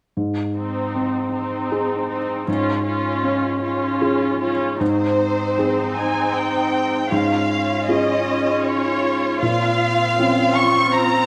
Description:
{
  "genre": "cinematic, emotional film score for orchestra",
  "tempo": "78 BPM",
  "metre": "3/4",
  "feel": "rubato",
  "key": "Ab major",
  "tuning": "A4 = 437 Hz",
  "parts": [
    { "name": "felt-muted upright piano", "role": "accompaniment", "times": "0.2-11.3 s", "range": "Ab2 to Ab4", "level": "-24 LUFS", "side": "equal", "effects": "none" },
    { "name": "rich studio viola section", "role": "accompaniment", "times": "0.6-11.3 s", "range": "C4 to F4", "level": "-25 LUFS", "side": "equal", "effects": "none" },
    { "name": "warm studio violin section", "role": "melody", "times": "4.8-11.3 s", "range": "C5 to Db6", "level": "-23 LUFS", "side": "equal", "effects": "none" }
  ],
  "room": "wet scoring stage reverb, RT60 1.5 s",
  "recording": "none",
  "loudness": "-20 LUFS",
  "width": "mono",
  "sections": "0.2-4.8 A section; 4.8-11.3 B section",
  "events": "none",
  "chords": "0.2 Ab; 2.5 Db/Ab; 4.8 Ab; 7.1 Db/Ab; 9.4 Bbmadd9",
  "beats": "| 0.17 0.94 1.71 | 2.47 3.23 4.01 | 4.80 5.58 6.36 | 7.12 7.89 8.65 | 9.42 10.18 10.95"
}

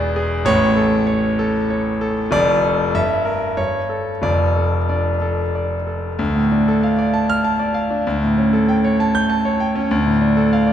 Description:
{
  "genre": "classical, virtuoso piano study",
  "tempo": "97 BPM",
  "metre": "3/4",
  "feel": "rubato",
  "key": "D minor",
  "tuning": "A4 = 437 Hz",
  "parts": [
    { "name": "clear grand piano", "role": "solo", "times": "0.0-10.7 s", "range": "E1 to G6", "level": "-16 LUFS", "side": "equal", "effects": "none" }
  ],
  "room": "wet scoring stage reverb, RT60 1.8 s",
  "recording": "none",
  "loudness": "-16 LUFS",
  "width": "side -10 dB against mid",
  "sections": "0.0-6.2 A section; 6.2-10.7 B section",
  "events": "none",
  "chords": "0.5 A; 2.3 Dm/F; 2.9 Edim/G; 3.6 A7/G; 4.2 Dm/F; 6.2 Dm; 8.0 A7/D; 9.9 Dm",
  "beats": "| 0.47 1.08 1.70 | 2.32 2.94 3.58 | 4.23 4.89 5.54 | 6.19 6.82 7.43 | 8.04 8.66 9.28 | 9.90 10.51"
}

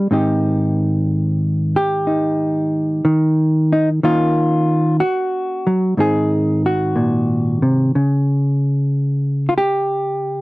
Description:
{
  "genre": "solo jazz",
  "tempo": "61 BPM",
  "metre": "4/4",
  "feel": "swing 67% on 8ths",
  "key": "Ab major",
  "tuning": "A4 = 443 Hz",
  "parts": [
    { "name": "hollow-body jazz guitar", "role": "solo", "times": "0.0-10.4 s", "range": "Ab2 to Ab4", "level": "-15 LUFS", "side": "equal", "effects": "none" }
  ],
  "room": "light reverb",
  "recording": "dry, close 1970s-style studio recording",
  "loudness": "-15 LUFS",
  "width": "side -20 dB against mid",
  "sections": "0.1-10.4 A section",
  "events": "none",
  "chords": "0.1 Abmaj7; 4.0 Ebm9; 6.0 Ab9; 7.9 Eb7 (rootless)",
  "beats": "| 0.12 1.09 2.07 3.05 | 4.03 5.01 5.98 6.96 | 7.94 8.92 9.89"
}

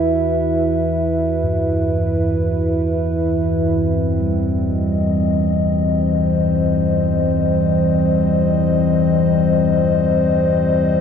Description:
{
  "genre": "dark ambient drone",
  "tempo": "free time",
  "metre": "none",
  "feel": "none",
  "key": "unclear",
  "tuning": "A4 = 439 Hz",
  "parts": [
    { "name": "dark analog pad", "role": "sustained chords", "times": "0.0-11.0 s", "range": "G3 to E5", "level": "-18 LUFS", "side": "left 1 dB", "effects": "chorus" },
    { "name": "bronze singing bowl", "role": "arpeggios", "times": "0.0-9.7 s", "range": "G2 to F#4", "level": "-26 LUFS", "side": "right 1 dB", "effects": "none" },
    { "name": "deep rumbling drone", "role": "drone", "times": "0.0-11.0 s", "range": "E2 to E3", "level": "-18 LUFS", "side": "left 1 dB", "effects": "built-in reverb, wide subtle chorus" }
  ],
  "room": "wet cathedral reverb, RT60 5.7 s",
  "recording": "nothing above 10.7 kHz",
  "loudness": "-15 LUFS",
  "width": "side -7 dB against mid",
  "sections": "0.0-11.0 A section",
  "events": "filter sweep on synth drone 0.0-11.0",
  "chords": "0.0 Emadd9; 3.7 Cm",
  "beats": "free time"
}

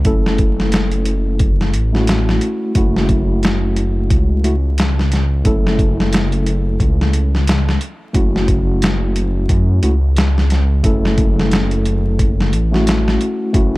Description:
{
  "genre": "trip hop",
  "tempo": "89 BPM",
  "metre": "4/4",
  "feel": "swing 58% on 16ths",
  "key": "F# minor",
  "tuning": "A4 = 437 Hz",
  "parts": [
    { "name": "mellow tine electric piano", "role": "accompaniment", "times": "0.0-13.8 s", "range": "A3 to A4", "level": "-20 LUFS", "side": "equal", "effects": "tremolo, tape echo" },
    { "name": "dark detuned saw bass", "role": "bass", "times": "0.0-13.8 s", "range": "F#1 to F#2", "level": "-16 LUFS", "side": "equal", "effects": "none" },
    { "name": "boom bap sampler-style drum kit", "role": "drums", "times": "0.0-13.8 s", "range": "hi-hat, kick drum, snare drum", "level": "-17 LUFS", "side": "equal", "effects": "overdrive" }
  ],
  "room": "light reverb, digital ambience",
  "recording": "dark, warm production, vinyl crackle",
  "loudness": "-13 LUFS",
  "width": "side -20 dB against mid",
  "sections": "0.0-13.8 A section",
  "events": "none",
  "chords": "0.0 F#m7",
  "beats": "| 0.06 0.73 1.40 2.08 | 2.75 3.43 4.10 4.78 | 5.45 6.12 6.80 7.47 | 8.14 8.82 9.49 10.17 | 10.84 11.52 12.19 12.87 | 13.54"
}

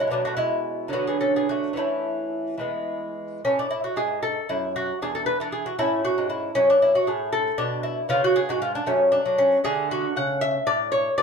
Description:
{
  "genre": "classical, baroque-style dance for lute",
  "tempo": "71-79 BPM (dotted quarters)",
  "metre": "6/8",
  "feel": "rubato",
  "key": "unclear",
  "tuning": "A4 = 440 Hz",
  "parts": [
    { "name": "lute", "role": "solo", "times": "0.0-11.2 s", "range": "E2 to F#5", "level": "-21 LUFS", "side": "equal", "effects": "slapback echo" }
  ],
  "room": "light reverb",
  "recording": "close, detailed microphones",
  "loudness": "-21 LUFS",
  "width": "side -5 dB against mid",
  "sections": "0.0-3.4 A section; 3.4-11.2 B section",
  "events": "none",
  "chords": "0.1 B5; 0.9 Bm/D; 1.8 A/E; 2.6 E; 3.4 F#m9; 5.0 E9; 5.8 A; 6.6 F#m; 8.1 C#5; 8.9 F#m; 9.6 D5",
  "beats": "| 0.12 0.93 | 1.77 2.62 | 3.44 4.24 | 5.02 5.80 | 6.58 7.34 | 8.11 8.88 | 9.64 10.41 | 11.18"
}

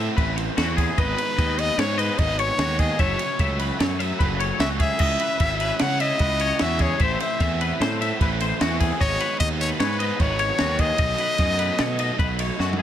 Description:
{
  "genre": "math rock and midwest emo",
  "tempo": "150 BPM",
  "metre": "5/4",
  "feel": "straight",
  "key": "unclear",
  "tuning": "A4 = 440 Hz",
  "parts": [
    { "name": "twangy electric guitar", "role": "arpeggios", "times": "0.0-12.8 s", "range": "F#4 to E5", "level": "-28 LUFS", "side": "left 6 dB", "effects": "ensemble chorus, plate reverb" },
    { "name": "overdriven electric guitar", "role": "riff", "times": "0.0-12.8 s", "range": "F#2 to E4", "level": "-29 LUFS", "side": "right 2 dB", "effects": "none" },
    { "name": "fuzz fingered electric bass", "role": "bass", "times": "0.0-12.8 s", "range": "F#1 to C#3", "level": "-27 LUFS", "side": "equal", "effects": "overdrive" },
    { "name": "compact cocktail drum kit", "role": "drums", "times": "0.2-12.8 s", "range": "crash cymbal, kick drum, ride cymbal, snare drum, toms", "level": "-25 LUFS", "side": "right 1 dB", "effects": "none" },
    { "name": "clear trumpet", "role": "melody", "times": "1.0-12.6 s", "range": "B4 to F#5", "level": "-26 LUFS", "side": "left 2 dB", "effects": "plate reverb, digital delay" }
  ],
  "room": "light reverb",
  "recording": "none",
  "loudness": "-20 LUFS",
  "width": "side -10 dB against mid",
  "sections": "0.0-12.8 A section",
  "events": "drum fill 12.6",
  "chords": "0.0 Am; 1.0 G#m; 3.0 F#m7; 5.0 C#m9; 7.0 Am; 9.0 G#m; 11.0 B9",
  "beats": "0.17 0.58 | 0.98 1.38 1.78 2.19 2.59 | 2.99 3.39 3.79 4.20 4.60 | 5.00 5.40 5.80 6.20 6.60 | 7.00 7.40 7.80 8.20 8.60 | 9.00 9.40 9.80 10.20 10.59 | 10.99 11.39 11.79 12.19 12.59"
}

